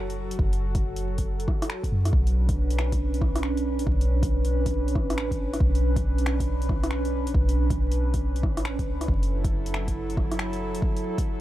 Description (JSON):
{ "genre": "future garage", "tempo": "138 BPM", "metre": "4/4", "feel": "swing 65% on 16ths", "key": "B minor", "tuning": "A4 = 439 Hz", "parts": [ { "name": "warbly tape-like pad", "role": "sustained chords", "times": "0.0-11.4 s", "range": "F#3 to B4", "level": "-30 LUFS", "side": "right 1 dB", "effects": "chorus, built-in reverb, sidechain pumping" }, { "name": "soft 808-style bass", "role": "bass", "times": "0.0-10.8 s", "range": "E1 to F#2", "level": "-25 LUFS", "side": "equal", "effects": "none" }, { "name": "deep house drum kit", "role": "drums", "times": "0.1-11.2 s", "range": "finger snaps, hi-hat, rim click", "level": "-34 LUFS", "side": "equal", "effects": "overdrive" }, { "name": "electronic kick drum", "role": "drums", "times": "0.4-11.2 s", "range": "none", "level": "-27 LUFS", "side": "equal", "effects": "overdrive" } ], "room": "little or no reverb", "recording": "vinyl crackle", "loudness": "-23 LUFS", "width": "side -14 dB against mid", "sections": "0.0-11.4 A section", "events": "none", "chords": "0.0 F#m; 2.1 Bmadd9; 9.1 F#m7" }